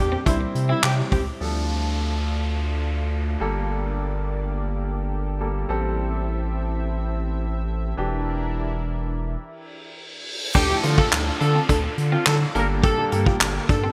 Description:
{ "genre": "dance-pop", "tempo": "105 BPM", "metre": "4/4", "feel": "straight", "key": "D minor", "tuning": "A4 = 439 Hz", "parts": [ { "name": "warm horn section", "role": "melody", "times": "0.0-1.2, 10.5-13.9 s", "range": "E4 to Bb4", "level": "-28 LUFS", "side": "equal", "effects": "sidechain pumping, delay" }, { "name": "clear concert grand piano", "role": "accompaniment", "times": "0.0-13.9 s", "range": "E3 to C5", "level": "-33 LUFS", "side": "equal", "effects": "sidechain pumping" }, { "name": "lush unison pad", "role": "sustained chords", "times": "0.0-13.9 s", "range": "D3 to E5", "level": "-35 LUFS", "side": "equal", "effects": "chorus, sidechain pumping" }, { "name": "clean electric guitar", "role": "riff", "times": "0.0-1.2, 10.6-13.9 s", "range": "Bb3 to G4", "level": "-34 LUFS", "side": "equal", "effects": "analog chorus" }, { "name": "saturated sub bass", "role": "bass", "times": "0.0-13.9 s", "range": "E1 to D3", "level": "-27 LUFS", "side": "equal", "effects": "sidechain pumping" }, { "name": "vintage brush drum kit", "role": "drums", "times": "0.3-1.3, 10.6-13.8 s", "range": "crash cymbal, handclaps, hi-hat, kick drum, snare drum", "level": "-24 LUFS", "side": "equal", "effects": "gated reverb" }, { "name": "downlifter and reverse cymbal", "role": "sound effects", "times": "1.4-6.0, 9.7-13.9 s", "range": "none", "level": "-36 LUFS", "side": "equal", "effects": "none" } ], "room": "moderate lush hall reverb, RT60 2.3 s", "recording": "bright 1980s-style digital production", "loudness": "-23 LUFS", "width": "mono", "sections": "0.0-1.4 A section; 1.4-10.6 B section; 10.6-13.9 A section", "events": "drop 0.0-1.4, 10.6-13.9; reverse cymbal 9.7-10.6", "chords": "0.3 C; 1.4 Dm; 3.4 Gmadd9; 5.7 Am7; 8.0 Em7b5; 10.6 Dm; 12.6 Gmadd9" }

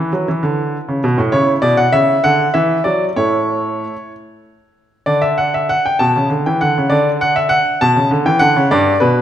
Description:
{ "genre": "classical-period piano sonatina", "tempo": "66 BPM (dotted quarters)", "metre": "6/8", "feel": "rubato", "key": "unclear", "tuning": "A4 = 439 Hz", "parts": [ { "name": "clear baby grand piano", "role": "solo", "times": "0.0-9.2 s", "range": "G2 to A5", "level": "-13 LUFS", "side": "equal", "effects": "none" } ], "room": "moderate recital hall reverb, RT60 1.5 s", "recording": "none", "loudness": "-12 LUFS", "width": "side -10 dB against mid", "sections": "0.0-9.2 A section", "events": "none", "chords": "0.0 E5; 1.3 Bsus24; 2.2 D; 3.2 A; 5.1 N.C.; 6.0 Bm11; 6.9 N.C.; 7.8 Bm" }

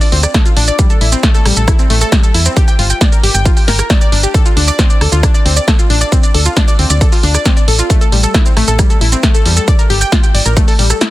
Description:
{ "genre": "uplifting trance", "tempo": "135 BPM", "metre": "4/4", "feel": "straight", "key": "D minor", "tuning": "A4 = 442 Hz", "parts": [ { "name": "analog pluck", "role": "arpeggios", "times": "0.0-11.1 s", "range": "G3 to G5", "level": "-17 LUFS", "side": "left 3 dB", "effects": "chorus, sidechain pumping, tape echo" }, { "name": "punchy analog drum machine", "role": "drums", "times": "0.0-11.1 s", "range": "hi-hat, rim click, shaker, snare drum", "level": "-16 LUFS", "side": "right 1 dB", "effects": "none" }, { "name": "solid FM bass", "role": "bass", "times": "0.1-10.9 s", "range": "G1 to E2", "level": "-13 LUFS", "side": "equal", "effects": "sidechain pumping" }, { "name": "electronic kick drum", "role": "drums", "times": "0.3-10.7 s", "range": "none", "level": "-11 LUFS", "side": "equal", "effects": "overdrive" } ], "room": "digital ambience", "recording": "dense, heavily limited modern master", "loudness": "-8 LUFS", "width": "side -16 dB against mid", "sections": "0.0-11.1 A section", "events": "none", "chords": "0.0 D5; 0.8 A5; 2.6 N.C.; 4.3 D5; 7.9 A5; 9.7 N.C." }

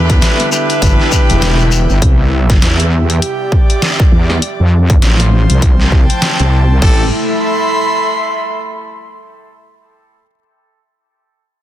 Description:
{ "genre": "glitch hop", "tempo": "100 BPM", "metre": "4/4", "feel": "swing 59% on 16ths", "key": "A minor", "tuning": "A4 = 440 Hz", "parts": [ { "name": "warbly tape-like pad", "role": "sustained chords", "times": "0.0-7.1 s", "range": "C3 to E4", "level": "-23 LUFS", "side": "left 2 dB", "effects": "chorus, built-in reverb, sidechain pumping" }, { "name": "bright horn section", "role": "stabs", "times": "0.0-2.0, 6.8-7.1 s", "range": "C4 to B4", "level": "-20 LUFS", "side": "equal", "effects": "sidechain pumping, dub echo" }, { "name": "wobble bass", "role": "bass", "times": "0.0-7.1 s", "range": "E1 to F2", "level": "-11 LUFS", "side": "equal", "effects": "chorus, overdrive" }, { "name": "airy breathy pad", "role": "texture", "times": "0.0-9.2 s", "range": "F3 to C6", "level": "-18 LUFS", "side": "right 1 dB", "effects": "chorus, sidechain pumping" }, { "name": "dubstep drum kit", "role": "drums", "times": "0.1-7.0 s", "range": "crash cymbal, hi-hat, snare drum", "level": "-18 LUFS", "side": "left 1 dB", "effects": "none" }, { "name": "electronic kick drum", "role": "drums", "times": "0.1-7.0 s", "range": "none", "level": "-10 LUFS", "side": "equal", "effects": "none" }, { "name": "shekere", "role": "percussion", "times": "0.1-2.0 s", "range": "none", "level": "-21 LUFS", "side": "left 5 dB", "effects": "none" } ], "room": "digital ambience", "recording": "dense, heavily limited modern master", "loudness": "-9 LUFS", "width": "side -13 dB against mid", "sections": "0.0-6.8 A section; 6.8-9.2 B section", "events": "filter sweep on ambient pad 0.0-6.8", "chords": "0.0 Em7; 2.0 Cmaj7; 4.4 Fmaj7; 6.8 Am7" }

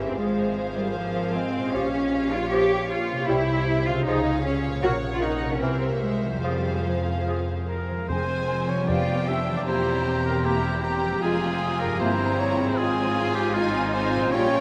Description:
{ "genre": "classical", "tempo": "154 BPM", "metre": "4/4", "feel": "rubato", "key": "F minor", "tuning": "A4 = 440 Hz", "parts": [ { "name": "warm symphonic violin section", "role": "melody", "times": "0.0-14.6 s", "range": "E5 to Bb5", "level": "-37 LUFS", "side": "equal", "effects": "none" }, { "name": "mellow clarinet", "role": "second line", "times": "0.0-14.6 s", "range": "F4 to E5", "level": "-35 LUFS", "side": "equal", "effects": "none" }, { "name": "rich symphonic violin section", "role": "second line", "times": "0.0-14.6 s", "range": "C4 to Db5", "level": "-36 LUFS", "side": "equal", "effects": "none" }, { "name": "clear bassoon", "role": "accompaniment", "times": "0.0-7.4 s", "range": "E3 to Bb3", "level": "-37 LUFS", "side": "equal", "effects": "none" }, { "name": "clear symphonic viola section", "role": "accompaniment", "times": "0.0-14.6 s", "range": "B3 to C5", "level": "-34 LUFS", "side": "equal", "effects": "none" }, { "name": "concert harp", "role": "arpeggios", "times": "0.0-14.6 s", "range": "G2 to Bb4", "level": "-34 LUFS", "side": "equal", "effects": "none" }, { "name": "clear symphonic double bass section", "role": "bass", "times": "0.0-14.6 s", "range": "E1 to F2", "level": "-33 LUFS", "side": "equal", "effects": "none" }, { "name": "rich symphonic cello section", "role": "bass", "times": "0.0-14.6 s", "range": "E2 to G4", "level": "-30 LUFS", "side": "equal", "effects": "none" }, { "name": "clear oboe", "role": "second line", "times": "7.7-14.6 s", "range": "F4 to E5", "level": "-31 LUFS", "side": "equal", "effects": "none" }, { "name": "dark French horn section", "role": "sustained chords", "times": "8.1-14.5 s", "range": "G3 to Ab4", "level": "-34 LUFS", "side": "equal", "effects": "none" }, { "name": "timpani", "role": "percussion", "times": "8.1-9.4 s", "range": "F2", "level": "-37 LUFS", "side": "equal", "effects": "none" } ], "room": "wet huge ambient reverb, RT60 7.3 s", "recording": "in a vast, echoing space", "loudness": "-24 LUFS", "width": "mono", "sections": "0.0-8.1 A section; 8.1-14.6 A section", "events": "none", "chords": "0.2 Fm/Ab; 1.7 Gm7b5/Bb; 3.3 C; 4.1 Db; 4.8 Gb/Bb; 5.6 C7; 6.4 Fm; 8.9 G7/F; 9.7 C7/E; 11.2 Fm; 12.0 C7/G; 12.8 Fm/Ab" }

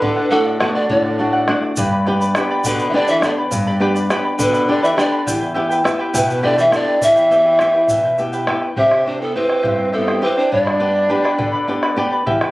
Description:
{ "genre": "andean folk, Andean ensemble", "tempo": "69 BPM (dotted quarters)", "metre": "6/8", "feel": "straight", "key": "unclear", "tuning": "A4 = 442 Hz", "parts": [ { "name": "breathy mellow pan flute", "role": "melody", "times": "0.0-12.0 s", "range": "A4 to E5", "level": "-16 LUFS", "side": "equal", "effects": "none" }, { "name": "mellow tenor saxophone", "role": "second line", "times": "0.0-12.0 s", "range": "A2 to G4", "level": "-24 LUFS", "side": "equal", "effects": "none" }, { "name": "charango", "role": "accompaniment", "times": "0.0-12.5 s", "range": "E4 to B5", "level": "-22 LUFS", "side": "equal", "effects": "none" }, { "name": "flamenco guitar", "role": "accompaniment", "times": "0.0-12.5 s", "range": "E2 to G4", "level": "-20 LUFS", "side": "left 1 dB", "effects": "none" }, { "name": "bombo", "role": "percussion", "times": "0.0-12.5 s", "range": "none", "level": "-24 LUFS", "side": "equal", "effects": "none" }, { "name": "tube shaker", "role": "percussion", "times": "1.8-8.4 s", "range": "none", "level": "-30 LUFS", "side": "right 1 dB", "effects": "none" } ], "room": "moderate small room reverb, RT60 0.6 s", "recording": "recorded on a phone in the room, studio reverb, compression", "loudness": "-14 LUFS", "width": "side -19 dB against mid", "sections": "0.0-8.8 A section; 8.8-12.5 B section", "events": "none", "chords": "0.0 D; 1.8 G; 5.3 Em; 8.8 C; 10.5 G" }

